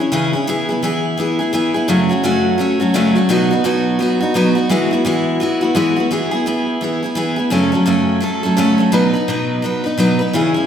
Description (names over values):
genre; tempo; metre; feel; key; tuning
country; 170 BPM; 4/4; swing 61% on 8ths; E major; A4 = 437 Hz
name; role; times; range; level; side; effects
picked steel-string acoustic guitar; solo; 0.0-10.7 s; F#2 to B4; -14 LUFS; equal; none
room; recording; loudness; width
wet scoring stage reverb, RT60 1.7 s; recorded in a church or concert hall; -14 LUFS; side -8 dB against mid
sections
0.0-6.1 A section; 6.1-10.7 B section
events
none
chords
0.5 E; 1.9 F#m; 3.3 B; 4.7 Eadd9; 6.1 E; 7.5 F#m; 8.9 B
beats
0.13 | 0.48 0.83 1.18 1.54 | 1.89 2.24 2.59 2.94 | 3.30 3.65 4.00 4.35 | 4.70 5.05 5.41 5.76 | 6.11 6.46 6.82 7.17 | 7.52 7.87 8.22 8.58 | 8.93 9.28 9.63 9.99 | 10.34